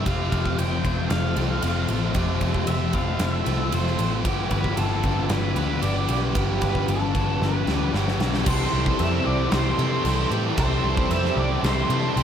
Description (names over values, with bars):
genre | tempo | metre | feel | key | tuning
rock, shoegaze and dream pop | 114 BPM | 4/4 | straight | C major | A4 = 439 Hz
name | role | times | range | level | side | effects
octave-fuzz lead guitar | melody | 0.0-12.2 s | A4 to G5 | -30 LUFS | equal | distortion, tape echo
picked twelve-string acoustic guitar | arpeggios | 0.0-12.2 s | F4 to C5 | -34 LUFS | right 6 dB | wide subtle chorus, tape echo
biting overdriven guitar | riff | 0.0-12.2 s | F2 to G4 | -29 LUFS | right 11 dB | reverse reverb
crunchy overdriven guitar | riff | 0.0-12.2 s | F2 to G4 | -28 LUFS | left 10 dB | lush chorus
vintage muted picked electric bass | bass | 0.0-12.2 s | F1 to C3 | -25 LUFS | equal | none
brassy analog pad | sustained chords | 0.1-12.2 s | F4 to E6 | -36 LUFS | equal | chorus
huge arena drum kit | drums | 0.1-12.2 s | crash cymbal, kick drum, ride cymbal, snare drum | -28 LUFS | equal | none
room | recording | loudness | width
light reverb, small room ambience | none | -20 LUFS | side -8 dB against mid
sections
0.0-8.5 A section; 8.5-12.2 B section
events
drum fill 7.4-8.5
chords
0.1 Fmaj7; 4.3 G7; 8.5 C6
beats
| 0.06 0.58 1.11 1.63 | 2.16 2.68 3.21 3.73 | 4.26 4.78 5.31 5.83 | 6.36 6.89 7.42 7.94 | 8.47 9.00 9.52 10.05 | 10.58 11.11 11.63 12.16